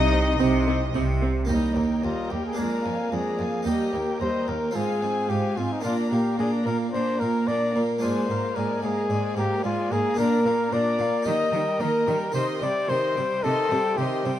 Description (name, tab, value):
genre	classical, baroque-style concerto movement with solo episodes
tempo	110 BPM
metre	4/4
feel	straight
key	unclear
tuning	A4 = 440 Hz
part	rich studio violin section	melody	0.0-14.4 s	Eb5 to C6	-38 LUFS	left 6 dB	none
part	warm trumpet	melody	0.0-14.3 s	Eb4 to Eb5	-26 LUFS	left 2 dB	none
part	warm chamber violin section	second line	0.0-14.4 s	Bb4 to Ab5	-34 LUFS	equal	none
part	harpsichord	accompaniment	0.0-14.4 s	Eb2 to Ab4	-27 LUFS	equal	none
part	rich chamber double bass section	bass	0.0-1.4 s	C2	-26 LUFS	right 2 dB	none
part	rich symphonic cello section	bass	0.0-14.3 s	Eb2 to Eb3	-30 LUFS	right 2 dB	none
part	rich chamber viola section	accompaniment	0.1-14.4 s	Eb3 to D4	-31 LUFS	right 2 dB	none
room	moderate recital hall reverb, RT60 1.4 s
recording	close, detailed microphones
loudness	-22 LUFS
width	side -11 dB against mid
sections	0.0-1.5 A section; 1.5-14.4 B section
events	none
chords	0.0 Cm; 1.5 Eb; 2.6 Bb7/F; 3.7 Eb; 4.8 Fm/Ab; 5.8 Bb; 8.0 Bb7/Ab; 10.2 Bb; 11.3 Eb; 12.3 Cm